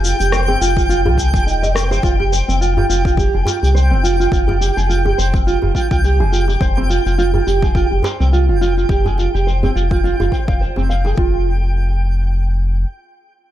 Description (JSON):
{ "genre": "organic downtempo", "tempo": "105 BPM", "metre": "4/4", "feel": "swing 56% on 16ths", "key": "F minor", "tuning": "A4 = 444 Hz", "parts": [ { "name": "nylon-string guitar", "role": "arpeggios", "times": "0.0-11.4 s", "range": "C4 to F5", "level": "-20 LUFS", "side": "right 4 dB", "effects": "tape echo" }, { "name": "warm sub bass", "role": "bass", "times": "0.0-12.9 s", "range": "Eb1 to C2", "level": "-16 LUFS", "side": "equal", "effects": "sidechain pumping" }, { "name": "electronic shaker and rim click", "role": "drums", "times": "0.0-11.2 s", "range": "none", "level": "-26 LUFS", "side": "left 2 dB", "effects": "overdrive, low-pass filter on perc, low-pass filter on snare, low-pass filter on room" }, { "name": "twinkling granular texture", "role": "texture", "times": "0.0-11.2 s", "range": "G5", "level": "-23 LUFS", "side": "left 1 dB", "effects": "built-in reverb" }, { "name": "djembe", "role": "percussion", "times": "0.5-11.1 s", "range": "none", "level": "-25 LUFS", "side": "right 1 dB", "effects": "none" }, { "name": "electronic kick drum", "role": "drums", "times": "0.8-11.3 s", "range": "none", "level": "-18 LUFS", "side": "equal", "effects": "overdrive" } ], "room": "digital ambience", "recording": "dry, gritty hardware recording", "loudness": "-13 LUFS", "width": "side -12 dB against mid", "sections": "0.0-11.2 A section; 11.2-13.5 B section", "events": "filter sweep on drum 0.0-11.2", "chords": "0.0 Ab5/F; 2.0 Fsus2; 11.2 N.C." }